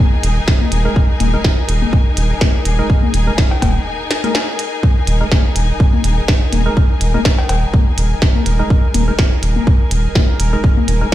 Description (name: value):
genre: minimal techno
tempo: 124 BPM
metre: 4/4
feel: swing 55% on 16ths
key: unclear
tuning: A4 = 440 Hz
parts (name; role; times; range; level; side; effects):
- warm symphonic string section; texture; 0.0-11.1 s; Eb4 to Ab5; -24 LUFS; left 3 dB; sidechain pumping
- saturated sub bass; bass; 0.2-11.0 s; Eb1; -15 LUFS; equal; sidechain pumping
- minimal click drum kit; drums; 0.2-11.1 s; hi-hat, snare drum; -20 LUFS; right 1 dB; none
- electronic kick drum; drums; 0.5-11.1 s; none; -12 LUFS; equal; none
- electronic toms and cowbell; percussion; 0.6-10.9 s; none; -24 LUFS; left 8 dB; dub echo
- percussive organ stab; stabs; 0.9-11.1 s; Ab3 to Bb4; -24 LUFS; right 2 dB; chorus, cassette tape, dub echo
- bubbling stepped-filter texture; texture; 5.6-11.1 s; Bb4; -31 LUFS; right 3 dB; chorus, built-in reverb, sidechain pumping
room: little or no reverb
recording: played on a big sound system in a bare room, stone room reverb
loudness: -12 LUFS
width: side -14 dB against mid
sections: 0.0-11.1 A section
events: break 3.9-4.8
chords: 0.0 Ebsus4